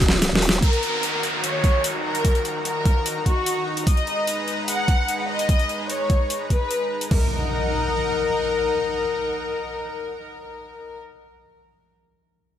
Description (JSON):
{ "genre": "heavy wobble dubstep", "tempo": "148 BPM", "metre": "4/4", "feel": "half-time", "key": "Eb minor", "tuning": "A4 = 438 Hz", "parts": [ { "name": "growl bass", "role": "bass", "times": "0.0-0.6 s", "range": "Eb1 to Fb1", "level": "-22 LUFS", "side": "equal", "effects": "chorus, overdrive" }, { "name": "dubstep drum kit", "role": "drums", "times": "0.0-7.2 s", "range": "crash cymbal, kick drum", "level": "-19 LUFS", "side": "equal", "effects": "overdrive" }, { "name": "dubstep drum kit", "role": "drums", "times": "0.0-7.1 s", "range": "crash cymbal, hi-hat, snare drum", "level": "-24 LUFS", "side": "equal", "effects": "overdrive" }, { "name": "warm symphonic violin section", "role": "melody", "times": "0.6-11.0 s", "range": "Gb4 to Gb5", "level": "-24 LUFS", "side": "left 2 dB", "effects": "digital delay" }, { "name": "supersaw pad", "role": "sustained chords", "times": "0.6-11.0 s", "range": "Eb3 to Bb5", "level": "-30 LUFS", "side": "equal", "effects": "vintage 12-bit sampler grit, sidechain pumping" }, { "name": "downlifter and impact", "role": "sound effects", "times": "0.6-3.9, 7.1-11.0 s", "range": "none", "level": "-28 LUFS", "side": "equal", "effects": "none" } ], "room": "light reverb", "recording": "none", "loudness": "-20 LUFS", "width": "side -10 dB against mid", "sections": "0.6-7.1 A section; 7.1-10.4 B section", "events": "drum fill 0.0-0.6; kick drops out 0.2-0.6", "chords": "0.0 N.C.; 0.6 Ebm; 3.9 Abmadd9; 7.1 Ebm", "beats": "0.22 | 0.62 1.03 1.44 1.84 | 2.25 2.65 3.06 3.46 | 3.87 4.27 4.68 5.08 | 5.49 5.89 6.30 6.71 | 7.11 7.52 7.92 8.33 | 8.73 9.14 9.54 9.95" }